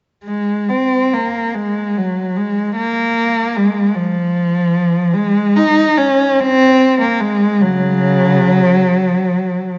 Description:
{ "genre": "classical, free, expressive piece for unaccompanied cello", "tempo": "30-52 BPM (dotted quarters)", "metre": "6/8", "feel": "rubato", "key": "unclear", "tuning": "A4 = 440 Hz", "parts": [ { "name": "warm cello", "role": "solo", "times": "0.2-9.8 s", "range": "Db3 to Eb4", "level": "-15 LUFS", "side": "equal", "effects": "none" } ], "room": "wet scoring stage reverb, RT60 2.1 s", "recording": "nothing above 7.9 kHz", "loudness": "-15 LUFS", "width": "mono", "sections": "0.2-9.8 A section", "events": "none", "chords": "none" }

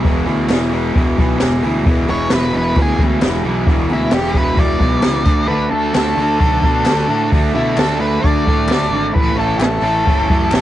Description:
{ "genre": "garage rock duo or trio", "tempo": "132 BPM", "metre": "4/4", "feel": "straight", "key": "E mixolydian", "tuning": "A4 = 441 Hz", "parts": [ { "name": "overdriven combo organ", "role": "sustained chords", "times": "0.0-10.6 s", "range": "C#4 to D5", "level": "-32 LUFS", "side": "left 1 dB", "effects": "none" }, { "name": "fuzz guitar", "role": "riff", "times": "0.0-10.6 s", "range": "E2 to D4", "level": "-18 LUFS", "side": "equal", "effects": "distortion, cassette tape" }, { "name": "fuzz fingered electric bass", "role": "bass", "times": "0.0-10.6 s", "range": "E1 to B2", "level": "-21 LUFS", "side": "equal", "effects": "overdrive" }, { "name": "jazz brush drum kit", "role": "drums", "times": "0.0-10.6 s", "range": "crash cymbal, hi-hat, kick drum, snare drum", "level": "-17 LUFS", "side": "equal", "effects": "cassette tape" }, { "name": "group handclap", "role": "percussion", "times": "0.5-10.6 s", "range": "none", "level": "-29 LUFS", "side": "left 6 dB", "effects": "none" }, { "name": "octave-fuzz lead guitar", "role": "melody", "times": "2.1-10.6 s", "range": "E4 to D5", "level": "-19 LUFS", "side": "equal", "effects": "distortion, cassette tape" } ], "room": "light reverb", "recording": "home recording on cassette, nothing above 10.8 kHz", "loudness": "-13 LUFS", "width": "side -13 dB against mid", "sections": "0.0-10.6 A section", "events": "none", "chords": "0.0 E; 5.3 D; 9.1 A" }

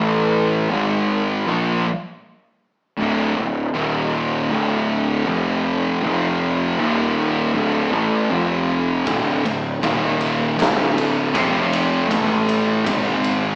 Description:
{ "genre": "stoner and doom metal", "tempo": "79 BPM", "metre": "4/4", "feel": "straight", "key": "unclear", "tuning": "A4 = 437 Hz", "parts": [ { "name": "thick fuzz guitar", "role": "riff", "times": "0.0-13.6 s", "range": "D2 to Bb3", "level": "-25 LUFS", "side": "equal", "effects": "distortion" }, { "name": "thick fuzz guitar", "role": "riff", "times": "0.0-13.6 s", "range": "D2 to Bb3", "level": "-24 LUFS", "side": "equal", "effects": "distortion" }, { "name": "fuzz picked electric bass", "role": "bass", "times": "0.0-13.6 s", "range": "D1 to Bb1", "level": "-26 LUFS", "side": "equal", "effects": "overdrive" }, { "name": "oversized low-tuned drum kit", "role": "drums", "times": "9.1-13.4 s", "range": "kick drum, ride cymbal, snare drum", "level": "-26 LUFS", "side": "equal", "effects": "none" } ], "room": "moderate large studio reverb, RT60 1.1 s", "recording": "band playing live in one room, small speaker sound", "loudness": "-20 LUFS", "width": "mono", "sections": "0.0-13.6 A section", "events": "none", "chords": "0.0 A5; 0.7 G#5; 1.5 Dm; 3.8 Eb5; 4.5 D5; 5.3 F5; 6.8 Eb5; 7.6 D5; 8.3 F5; 9.1 D5; 9.8 Eb5; 10.6 D5; 11.3 F5; 12.1 A5; 12.9 G#5" }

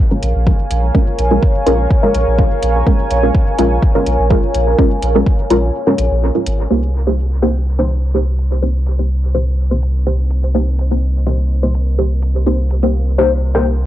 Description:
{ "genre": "dub techno", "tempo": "125 BPM", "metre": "4/4", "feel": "straight", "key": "C phrygian", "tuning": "A4 = 440 Hz", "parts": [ { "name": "deep dark ambient pad", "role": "sustained chords", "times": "0.2-13.9 s", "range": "Bb4 to Ab5", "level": "-21 LUFS", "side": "equal", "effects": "chorus, built-in reverb, sidechain pumping, cassette tape" }, { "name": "filtered dub chord stab", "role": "stabs", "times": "0.0-13.7 s", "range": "Ab3 to C5", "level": "-17 LUFS", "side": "equal", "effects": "phaser, sidechain pumping, cassette tape, dub echo" }, { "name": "soft dub sub bass", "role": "bass", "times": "0.2-13.9 s", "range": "Ab1 to C2", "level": "-15 LUFS", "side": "equal", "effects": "transformer saturation, sidechain pumping" }, { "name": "electronic hi-hat", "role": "drums", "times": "0.2-13.8 s", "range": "none", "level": "-31 LUFS", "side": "equal", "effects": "overdrive, low-pass filter on hats, cassette tape, low-pass filter on room" }, { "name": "electronic kick drum", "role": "drums", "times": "0.5-5.4 s", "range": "none", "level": "-13 LUFS", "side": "equal", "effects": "overdrive, cassette tape" } ], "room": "light reverb", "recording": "home recording on cassette", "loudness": "-12 LUFS", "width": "side -13 dB against mid", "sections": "0.0-6.7 A section; 6.7-13.9 B section", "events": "filter sweep on synth stab 0.0-6.7, 6.7-13.9; break 5.7-6.7; filter sweep on ambient pad 6.7-13.9", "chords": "0.0 Bbm7; 6.7 Cm7" }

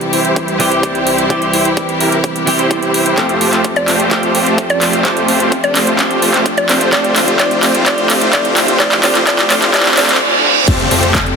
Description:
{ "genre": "EDM, festival progressive house", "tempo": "128 BPM", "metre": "4/4", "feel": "straight", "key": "F major", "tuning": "A4 = 439 Hz", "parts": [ { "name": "direct-recorded clean electric guitar", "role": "accompaniment", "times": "0.0-10.2 s", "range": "E3 to G4", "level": "-19 LUFS", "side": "right 1 dB", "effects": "lush chorus, sidechain pumping, dub echo" }, { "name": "clear studio string section", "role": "sustained chords", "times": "0.0-11.4 s", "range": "C2 to A4", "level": "-21 LUFS", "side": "left 3 dB", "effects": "sidechain pumping" }, { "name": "big-room dance drum kit", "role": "drums", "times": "0.0-11.4 s", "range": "crash cymbal, handclaps, hi-hat", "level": "-15 LUFS", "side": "equal", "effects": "none" }, { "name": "riser, reverse cymbal and impact", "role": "sound effects", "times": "0.9-11.4 s", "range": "none", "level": "-22 LUFS", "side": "right 2 dB", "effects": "none" }, { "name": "supersaw chords", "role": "riff", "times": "0.1-11.2 s", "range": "A3 to C5", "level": "-16 LUFS", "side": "equal", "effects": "sidechain pumping, low-pass filter, dub echo" }, { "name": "electronic kick drum", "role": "drums", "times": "0.4-11.2 s", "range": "none", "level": "-17 LUFS", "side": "left 1 dB", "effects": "high-pass filter on kick" }, { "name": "mallet-like synth pluck", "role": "melody", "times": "3.8-10.2 s", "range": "D5", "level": "-18 LUFS", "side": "equal", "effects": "chorus, dub echo" }, { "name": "saturated sub bass", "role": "bass", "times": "10.7-11.4 s", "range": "F2", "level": "-19 LUFS", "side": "left 1 dB", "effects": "sidechain pumping" } ], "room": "moderate huge ambient reverb, RT60 6.6 s", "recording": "dense, heavily limited modern master, high-pass filter", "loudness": "-10 LUFS", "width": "side -5 dB against mid", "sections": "0.0-10.7 A section", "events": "build-up 0.0-10.7; filter sweep on supersaw synth 0.0-10.7; drum fill 3.2-10.2; reverse cymbal 9.7-10.7; impact 10.7-11.4", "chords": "0.0 C; 3.2 Fadd9; 6.9 Dm7; 10.7 Fadd9" }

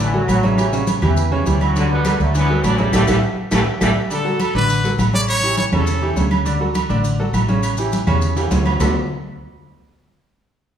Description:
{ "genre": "latin, salsa", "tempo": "204 BPM", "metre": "4/4", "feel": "straight", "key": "D major", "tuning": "A4 = 440 Hz", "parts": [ { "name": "brilliant trombone section", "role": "melody", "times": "0.0-3.9 s", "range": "C#3 to D4", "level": "-25 LUFS", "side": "right 2 dB", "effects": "none" }, { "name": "clear trombone section", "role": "second line", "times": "0.0-3.9 s", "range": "B2 to A3", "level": "-25 LUFS", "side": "equal", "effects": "none" }, { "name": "bright baby grand piano", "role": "accompaniment", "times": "0.0-8.9 s", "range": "C#3 to D5", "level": "-22 LUFS", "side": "equal", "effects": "none" }, { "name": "deep dub fingered electric bass", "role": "bass", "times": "0.0-8.9 s", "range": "A1 to E2", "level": "-20 LUFS", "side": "equal", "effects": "none" }, { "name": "maracas", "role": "percussion", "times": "0.0-8.9 s", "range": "none", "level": "-34 LUFS", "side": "left 3 dB", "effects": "none" }, { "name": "congas", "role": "percussion", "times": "0.1-8.9 s", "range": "none", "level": "-23 LUFS", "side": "equal", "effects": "none" }, { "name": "agogo bells and timbales", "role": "percussion", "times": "0.3-8.9 s", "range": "none", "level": "-26 LUFS", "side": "right 7 dB", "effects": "none" }, { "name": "claves", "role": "percussion", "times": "0.3-8.9 s", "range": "none", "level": "-34 LUFS", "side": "left 3 dB", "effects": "none" }, { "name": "bright trumpet", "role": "melody", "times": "4.1-6.3 s", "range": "A4 to D5", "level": "-21 LUFS", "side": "left 1 dB", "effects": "none" } ], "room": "wet large studio reverb, RT60 1.3 s", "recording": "band playing live in one room, small room ambience", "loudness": "-15 LUFS", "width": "side -9 dB against mid", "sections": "0.0-4.1 A section; 4.1-8.8 B section; 8.8-10.0 C section", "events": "band accent 2.9-4.1; drum fill 3.2-4.1, 8.4-8.8", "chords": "0.0 D; 0.6 A7; 1.8 D6; 2.9 A5; 4.1 D6; 5.3 A7; 6.5 D; 7.6 A7; 8.8 D6" }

